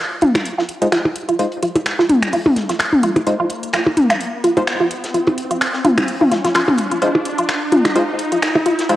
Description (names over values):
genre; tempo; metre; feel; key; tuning
minimal techno; 128 BPM; 4/4; swing 55% on 16ths; F minor; A4 = 441 Hz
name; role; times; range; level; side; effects
riser; sound effects; 0.1-9.0 s; none; -26 LUFS; equal; none
resonant blip pluck; riff; 0.2-9.0 s; F4; -20 LUFS; equal; phaser, cassette tape, tape echo
house drum kit; drums; 0.2-9.0 s; finger snaps, hi-hat; -22 LUFS; equal; overdrive, cassette tape
tight metal drum kit; drums; 0.2-9.0 s; hi-hat, snare drum; -32 LUFS; left 1 dB; high-pass filter on hats, cassette tape, high-pass filter on snare, high-pass filter on room
electronic toms and percussion blips; percussion; 0.2-8.6 s; none; -16 LUFS; equal; cassette tape, analog delay
wavetable chord stab; stabs; 0.8-9.0 s; Ab3 to C5; -21 LUFS; equal; cassette tape, analog delay
room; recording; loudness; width
moderate lush hall reverb, RT60 2.0 s; home recording on cassette, high-pass filter; -14 LUFS; side -14 dB against mid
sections
0.0-9.0 A section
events
build-up 0.0-9.0; filter sweep on synth stab 0.0-9.0; riser 0.1-9.0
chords
none